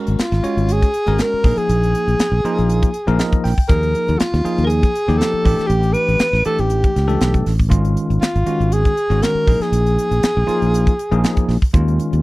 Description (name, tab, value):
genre	electric jazz fusion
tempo	120 BPM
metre	4/4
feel	swing 53% on 16ths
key	unclear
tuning	A4 = 440 Hz
part	bell-like tine electric piano	accompaniment	0.0-12.2 s	D#3 to G5	-22 LUFS	left 1 dB	medium stereo tremolo
part	fingered electric bass	bass	0.1-12.2 s	G#1 to D#2	-18 LUFS	equal	none
part	tight funk drum kit	drums	0.1-12.2 s	hi-hat, kick drum, snare drum	-17 LUFS	equal	none
part	breathy alto saxophone	melody	0.2-11.5 s	E#4 to B4	-19 LUFS	equal	none
room	little or no reverb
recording	dry, close 1970s-style studio recording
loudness	-14 LUFS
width	side -20 dB against mid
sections	0.0-12.2 A section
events	tine electric piano fill 3.0-3.7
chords	0.0 G#13sus4; 1.4 A#7sus4; 3.7 D#sus24; 5.5 A9sus4; 7.7 G#7sus4; 9.5 A#7sus4